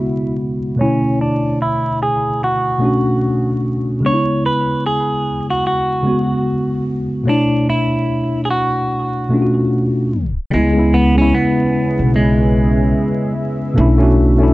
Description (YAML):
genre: lo-fi hip hop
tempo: 74 BPM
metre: 4/4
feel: swing 59% on 16ths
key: unclear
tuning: A4 = 439 Hz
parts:
  - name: clean electric guitar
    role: melody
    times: 0.0-13.3 s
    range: G3 to C#5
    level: -19 LUFS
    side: right 1 dB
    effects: warbly pitch drift, low-pass filter, analog delay
  - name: mellow tine electric piano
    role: accompaniment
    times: 0.0-14.5 s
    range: B2 to C#5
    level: -16 LUFS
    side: equal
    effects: medium stereo tremolo, cassette tape, low-pass filter
  - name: dark analog pad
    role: sustained chords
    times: 11.3-14.5 s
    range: D3 to E5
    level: -25 LUFS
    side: right 1 dB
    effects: chorus
  - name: upright bass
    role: bass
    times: 10.5-14.5 s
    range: B1 to C#2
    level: -15 LUFS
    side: equal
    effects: none
room: moderate small room reverb, RT60 0.5 s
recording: vinyl crackle, tape stop, nothing above 7.9 kHz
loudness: -14 LUFS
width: side -18 dB against mid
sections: 0.0-10.5 A section; 10.5-14.5 B section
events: filter sweep 0.0-10.5; tape stop 10.1-10.5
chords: 0.0 C#m7; 0.8 Bm11; 4.0 C#m7; 7.3 Bm11; 10.5 C#m7; 13.8 Bm11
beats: | 0.79 1.60 2.41 3.22 | 4.04 4.85 5.66 6.47 | 7.28 8.09 8.90 9.71 | 10.52 11.33 12.14 12.95 | 13.77